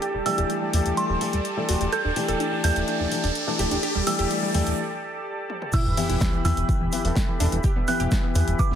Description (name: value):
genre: progressive house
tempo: 126 BPM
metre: 4/4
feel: straight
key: E minor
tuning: A4 = 444 Hz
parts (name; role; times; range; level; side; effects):
- filtered supersaw swell; sustained chords; 0.0-8.8 s; G4 to B5; -33 LUFS; right 2 dB; sidechain pumping
- wide unison pluck; arpeggios; 0.0-8.8 s; E3 to A4; -30 LUFS; right 2 dB; cassette tape, sidechain pumping, dub echo
- deep house drum kit; drums; 0.0-8.7 s; crash cymbal, hi-hat, snare drum, toms; -32 LUFS; left 2 dB; overdrive, sidechain pumping on hats, high-pass filter on hats, sidechain pumping on toms, high-pass filter on toms, sidechain pumping on cymbals, high-pass filter on cymbals, high-pass filter on snare, high-pass filter on room
- riser and sub drop; sound effects; 0.1-7.6 s; none; -32 LUFS; equal; none
- plucky analog bass; bass; 0.1-8.8 s; E1 to E2; -25 LUFS; equal; tube saturation, sidechain pumping
- glassy synth bell; melody; 0.3-8.8 s; C6 to G6; -30 LUFS; right 4 dB; chorus, tape echo
- dark baby grand piano; stabs; 0.3-8.8 s; E3 to A4; -28 LUFS; left 3 dB; sidechain pumping, dub echo
- damped 70s drum kit; drums; 5.7-8.8 s; hi-hat, shaker, snare drum; -40 LUFS; left 1 dB; sidechain pumping on hats, high-pass filter on hats, high-pass filter on snare, sidechain pumping on perc, high-pass filter on perc, high-pass filter on room
- electronic kick drum; drums; 5.7-8.7 s; none; -23 LUFS; equal; overdrive
room: moderate digital room reverb, RT60 1.0 s, digital ambience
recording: none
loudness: -21 LUFS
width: side -9 dB against mid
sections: 0.0-5.7 A section; 5.7-8.8 B section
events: build-up 0.0-5.7; filter sweep on synth pluck 0.0-5.7; filter sweep on synth bell 0.0-5.7; riser 0.1-4.8; break 4.8-5.7; drum fill 5.5; drop 5.7-8.8; impact 5.7-7.6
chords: 0.0 Gsus2/E; 5.7 Em